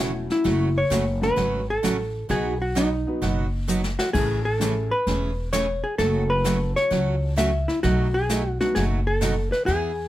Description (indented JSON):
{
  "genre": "country, western swing",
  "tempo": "130 BPM",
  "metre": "4/4",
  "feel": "swing 68% on 8ths",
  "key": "unclear",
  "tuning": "A4 = 439 Hz",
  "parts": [
    { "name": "hollow-body jazz guitar", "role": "melody", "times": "0.0-10.1 s", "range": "D#4 to E5", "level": "-24 LUFS", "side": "left 1 dB", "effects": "none" },
    { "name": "picked steel-string acoustic guitar", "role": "accompaniment", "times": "0.0-9.9 s", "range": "B2 to G#4", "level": "-27 LUFS", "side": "right 4 dB", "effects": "none" },
    { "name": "warm upright piano", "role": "accompaniment", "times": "0.0-8.7 s", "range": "F#3 to B4", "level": "-31 LUFS", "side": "left 2 dB", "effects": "none" },
    { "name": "upright bass", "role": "bass", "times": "0.0-10.1 s", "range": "E1 to E2", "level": "-26 LUFS", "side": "equal", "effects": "none" },
    { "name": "jazz brush drum kit", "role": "drums", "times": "0.3-10.1 s", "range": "brushed snare drum, crash cymbal, hi-hat, kick drum, snare drum", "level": "-32 LUFS", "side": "left 1 dB", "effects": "none" }
  ],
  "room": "light reverb",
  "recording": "none",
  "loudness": "-21 LUFS",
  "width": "side -14 dB against mid",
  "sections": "0.0-10.1 A section",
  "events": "drum fill 3.7-4.1",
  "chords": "0.4 F#m; 2.3 B; 4.1 Amaj7; 6.0 F#m; 7.8 B7"
}